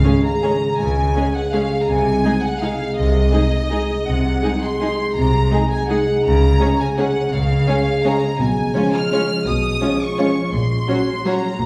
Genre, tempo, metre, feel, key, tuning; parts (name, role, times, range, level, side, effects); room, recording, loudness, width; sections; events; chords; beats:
classical, orchestral ballroom waltz; 166 BPM; 3/4; uneven beats, rubato; Db major; A4 = 440 Hz
rich studio violin section; melody; 0.0-11.7 s; Eb5 to F6; -27 LUFS; equal
warm studio violin section; second line; 0.0-11.3 s; F4 to Db5; -32 LUFS; equal
rich studio viola section; accompaniment; 0.0-11.3 s; Gb3 to Eb4; -27 LUFS; equal
concert harp; arpeggios; 0.0-11.7 s; Bb2 to Ab5; -24 LUFS; equal
warm French horn section; sustained chords; 0.1-11.4 s; F3 to Eb4; -29 LUFS; equal
rich studio cello section; bass; 0.8-11.7 s; Bb2 to Db3; -26 LUFS; equal
rich studio double bass section; bass; 0.8-11.7 s; Bb1 to Db2; -24 LUFS; equal
wet recital hall reverb, RT60 1.6 s; heard from further back in the room; -18 LUFS; mono
0.0-11.7 A section
0.0 Db; 1.9 Ab/C; 4.1 Ab7/C; 6.2 Db; 8.4 Db7/Cb; 10.5 Gb/Bb
0.05 0.43 | 0.79 1.16 1.53 | 1.88 2.24 2.61 | 2.97 3.33 3.71 | 4.07 4.43 4.80 | 5.16 5.52 5.89 | 6.24 6.60 6.97 | 7.32 7.68 8.05 | 8.39 8.75 9.12 | 9.46 9.82 10.19 | 10.53 10.88 11.26 | 11.61